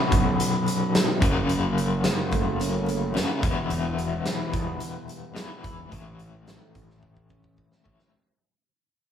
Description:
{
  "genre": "quiet-loud alternative rock",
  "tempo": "109 BPM",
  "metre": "4/4",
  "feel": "straight",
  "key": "unclear",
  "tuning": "A4 = 441 Hz",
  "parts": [
    { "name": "picked steel-string acoustic guitar", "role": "arpeggios", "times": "0.0-8.1 s", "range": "E2 to E4", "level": "-34 LUFS", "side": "right 8 dB", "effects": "none" },
    { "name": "overdriven semi-hollow guitar", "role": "riff", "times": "0.0-8.1 s", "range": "B1 to A3", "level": "-26 LUFS", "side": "left 3 dB", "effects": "tremolo" },
    { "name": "fuzz picked electric bass", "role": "bass", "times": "0.1-8.0 s", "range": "E1 to E2", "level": "-32 LUFS", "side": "right 1 dB", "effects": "overdrive" },
    { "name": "big rock drum kit", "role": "drums", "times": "0.1-8.1 s", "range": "hi-hat, kick drum, snare drum", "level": "-27 LUFS", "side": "right 1 dB", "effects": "none" }
  ],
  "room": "moderate large studio reverb, RT60 1.1 s",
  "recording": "band playing live in one room",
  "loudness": "-22 LUFS",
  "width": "side -9 dB against mid",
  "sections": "0.0-8.1 A section",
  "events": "fade-out 0.0-8.1; drum fill 7.0-8.1",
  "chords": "0.0 B5; 1.2 F#m; 3.4 Em; 5.9 A"
}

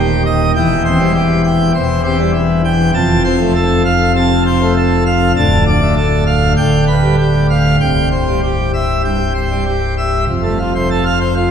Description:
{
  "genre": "classical, organ toccata",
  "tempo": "99 BPM",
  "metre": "4/4",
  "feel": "straight",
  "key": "F major",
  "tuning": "A4 = 441 Hz",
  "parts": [
    { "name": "pipe organ, plenum", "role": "solo", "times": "0.0-11.5 s", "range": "C1 to A5", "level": "-11 LUFS", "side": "equal", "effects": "none" }
  ],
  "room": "wet church reverb, RT60 3.7 s",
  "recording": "heard from further back in the room",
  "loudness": "-11 LUFS",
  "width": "side -8 dB against mid",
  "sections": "0.0-10.3 A section; 10.3-11.5 B section",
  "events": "none",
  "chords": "0.0 Cm/Eb (rootless); 0.6 C/E; 3.0 F; 5.4 Dm; 6.6 G7/D; 7.8 C; 10.3 F"
}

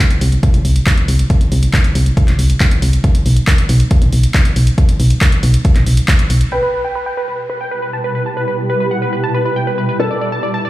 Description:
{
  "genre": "uplifting trance",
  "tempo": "138 BPM",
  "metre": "4/4",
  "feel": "straight",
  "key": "E minor",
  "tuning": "A4 = 440 Hz",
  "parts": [
    { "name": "electronic kick drum", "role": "drums", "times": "0.0-6.2 s", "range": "none", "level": "-12 LUFS", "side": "equal", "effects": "overdrive" },
    { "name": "punchy analog drum machine", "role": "drums", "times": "0.0-6.6 s", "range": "crash cymbal, handclaps, hi-hat", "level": "-21 LUFS", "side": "equal", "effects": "overdrive, sidechain pumping on hats, low-pass filter on hats, low-pass filter on snare, sidechain pumping on cymbals, low-pass filter on cymbals, low-pass filter on room" },
    { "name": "solid FM bass", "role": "bass", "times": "0.2-6.4 s", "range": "B1 to C2", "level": "-12 LUFS", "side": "equal", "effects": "tube saturation, sidechain pumping" },
    { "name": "supersaw stab", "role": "melody", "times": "6.5-10.7 s", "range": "B4 to A5", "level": "-19 LUFS", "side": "right 1 dB", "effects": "sidechain pumping, low-pass filter, tape echo" },
    { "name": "felt-muted upright piano", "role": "second line", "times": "6.5-7.1, 10.0-10.6 s", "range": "A4 to B4", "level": "-21 LUFS", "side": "left 1 dB", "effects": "tape echo" },
    { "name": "shimmering ambient pad", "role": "sustained chords", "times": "7.8-10.7 s", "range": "A2 to G4", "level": "-20 LUFS", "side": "right 1 dB", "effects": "chorus, built-in reverb, sidechain pumping" }
  ],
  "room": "digital ambience",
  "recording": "played on a big sound system in a bare room, large studio reverb",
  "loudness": "-12 LUFS",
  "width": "side -16 dB against mid",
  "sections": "0.0-6.5 A section; 6.5-10.7 B section",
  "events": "band accent 6.1; filter sweep on supersaw synth 6.5-10.7",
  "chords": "0.0 N.C.; 6.5 Em; 10.0 D"
}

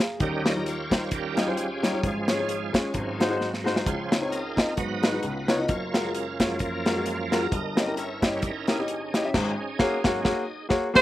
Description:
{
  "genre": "uptempo gospel",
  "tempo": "132 BPM",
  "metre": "4/4",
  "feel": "swing 56% on 8ths",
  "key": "Db major",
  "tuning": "A4 = 436 Hz",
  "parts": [
    { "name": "warm baby grand piano", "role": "accompaniment", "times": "0.0-11.0 s", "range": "Gb1 to Bb5", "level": "-27 LUFS", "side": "left 2 dB", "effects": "slapback echo" },
    { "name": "modern studio drum kit", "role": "drums", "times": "0.0-11.0 s", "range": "crash cymbal, hi-hat, kick drum, snare drum", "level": "-25 LUFS", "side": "equal", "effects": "none" },
    { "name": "bright tonewheel organ", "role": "sustained chords", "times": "0.2-10.7 s", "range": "Gb2 to Eb5", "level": "-31 LUFS", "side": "right 3 dB", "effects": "slow rotary speaker, chorus vibrato" },
    { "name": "warm horn section", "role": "melody", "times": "11.0 s", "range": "Eb4 to C5", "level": "-13 LUFS", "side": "right 2 dB", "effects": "none" }
  ],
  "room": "little or no reverb",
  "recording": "recorded outdoors, with no room sound",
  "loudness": "-23 LUFS",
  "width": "side -14 dB against mid",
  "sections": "0.0-11.0 A section",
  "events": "grand piano fill 0.0; tonewheel organ solo 0.0-11.0; drum fill 3.4-3.9; band accent 9.3-11.0",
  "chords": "0.2 Eb9; 2.0 Db/Ab; 3.0 Ab7; 3.9 Dbmaj9; 4.8 Abm7; 5.2 Db9; 5.7 Gbmaj9; 7.5 Eb7b9/G; 9.3 Ab9sus4"
}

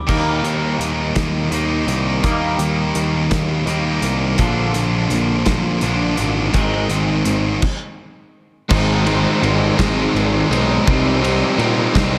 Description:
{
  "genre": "quiet-loud alternative rock",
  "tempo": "56 BPM (dotted quarters)",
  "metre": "6/8",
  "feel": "straight",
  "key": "C minor",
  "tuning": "A4 = 440 Hz",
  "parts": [
    { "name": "twangy electric guitar", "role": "arpeggios", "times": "0.0-7.6 s", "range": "Ab2 to Bb3", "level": "-29 LUFS", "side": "equal", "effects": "phaser, analog delay" },
    { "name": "high-gain distorted guitar", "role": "riff", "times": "0.1-12.2 s", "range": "Ab2 to Eb4", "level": "-22 LUFS", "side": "equal", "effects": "distortion" },
    { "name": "fuzz picked electric bass", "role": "bass", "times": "0.1-12.2 s", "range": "Ab1 to Bb2", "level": "-23 LUFS", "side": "equal", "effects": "overdrive" },
    { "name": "loose indie drum kit", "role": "drums", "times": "0.1-12.1 s", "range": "crash cymbal, hi-hat, kick drum, ride cymbal, snare drum", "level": "-24 LUFS", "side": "equal", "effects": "none" },
    { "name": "crunchy overdriven guitar", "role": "riff", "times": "8.7-12.2 s", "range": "Ab2 to Eb4", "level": "-22 LUFS", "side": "equal", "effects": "slapback echo" }
  ],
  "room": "moderate concert hall reverb, RT60 2.2 s",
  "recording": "big arena sound",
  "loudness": "-18 LUFS",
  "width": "mono",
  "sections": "0.1-8.7 A section; 8.7-12.2 B section",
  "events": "stop 7.6-8.7",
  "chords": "0.0 Cm; 4.4 Bb; 6.5 Ab; 10.9 Cm"
}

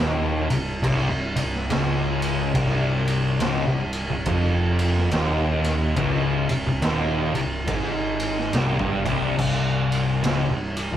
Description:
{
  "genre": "stoner and doom metal",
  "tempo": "70 BPM",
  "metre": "4/4",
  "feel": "swing 61% on 8ths",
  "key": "C minor",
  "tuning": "A4 = 440 Hz",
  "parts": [
    { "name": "thick fuzz guitar", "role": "riff", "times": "0.0-11.0 s", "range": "C2 to Ab2", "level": "-22 LUFS", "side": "left 1 dB", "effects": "distortion" },
    { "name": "overdriven fingered electric bass", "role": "bass", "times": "0.0-11.0 s", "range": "C1 to Ab1", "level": "-30 LUFS", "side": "right 1 dB", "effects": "none" },
    { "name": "raw garage drum kit", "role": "drums", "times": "0.0-10.9 s", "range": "crash cymbal, kick drum, ride cymbal, snare drum", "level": "-27 LUFS", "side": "right 1 dB", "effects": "none" }
  ],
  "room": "moderate large studio reverb, RT60 1.4 s",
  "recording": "band playing live in one room",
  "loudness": "-20 LUFS",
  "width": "side -11 dB against mid",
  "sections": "0.0-11.0 A section",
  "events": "none",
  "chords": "0.0 Cm"
}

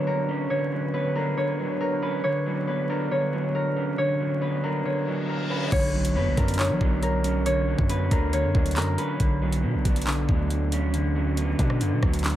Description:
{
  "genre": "hip hop, drill",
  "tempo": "138 BPM",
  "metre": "4/4",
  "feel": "half-time",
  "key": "B harmonic minor",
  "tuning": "A4 = 440 Hz",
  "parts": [
    { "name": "Celtic harp", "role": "melody", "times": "0.0-11.0 s", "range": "A#4 to C#5", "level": "-28 LUFS", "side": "equal", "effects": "low-pass filter, tape echo" },
    { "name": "electric guitar at the edge of break-up", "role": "accompaniment", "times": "0.0-12.4 s", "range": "D3 to D4", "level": "-27 LUFS", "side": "right 1 dB", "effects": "low-pass filter, tape echo" },
    { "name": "warm analog pad", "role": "sustained chords", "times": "0.0-5.7 s", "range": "D3 to C#5", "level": "-34 LUFS", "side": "right 1 dB", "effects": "chorus" },
    { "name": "reverse cymbal and impact", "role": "sound effects", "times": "5.1-7.5 s", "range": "none", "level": "-35 LUFS", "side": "equal", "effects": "none" },
    { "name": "long sustained 808-style bass", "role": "bass", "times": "5.7-12.4 s", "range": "B1 to F#3", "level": "-26 LUFS", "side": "equal", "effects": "none" },
    { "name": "drill drum kit", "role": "drums", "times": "5.7-12.3 s", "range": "crash cymbal, handclaps, hi-hat, kick drum, rim click", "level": "-26 LUFS", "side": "equal", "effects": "none" }
  ],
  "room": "light reverb, digital ambience",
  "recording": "echo-heavy mix, vinyl crackle",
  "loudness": "-22 LUFS",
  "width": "side -12 dB against mid",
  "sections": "0.0-5.7 A section; 5.7-12.4 B section",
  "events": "reverse cymbal 5.1-5.7; impact 5.7-7.5",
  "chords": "0.0 Bmadd9"
}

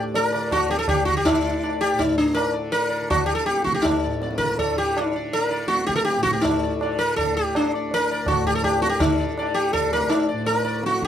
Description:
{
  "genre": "indian classical, Hindustani",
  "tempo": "163 BPM",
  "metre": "7/4",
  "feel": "straight",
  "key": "D raga bhairav",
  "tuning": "A4 = 440 Hz",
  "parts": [
    { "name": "sitar", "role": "melody", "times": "0.0-11.1 s", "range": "D4 to D5", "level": "-21 LUFS", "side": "equal", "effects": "none" },
    { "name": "tanpura", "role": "drone", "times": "0.0-11.1 s", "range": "D2 to D3", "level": "-30 LUFS", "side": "equal", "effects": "none" },
    { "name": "tabla", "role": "percussion", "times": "0.1-11.1 s", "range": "none", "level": "-26 LUFS", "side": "equal", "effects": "none" }
  ],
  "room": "light reverb",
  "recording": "close, detailed microphones",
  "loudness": "-19 LUFS",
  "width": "side -10 dB against mid",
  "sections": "0.0-11.1 A section",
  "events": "none",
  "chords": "none"
}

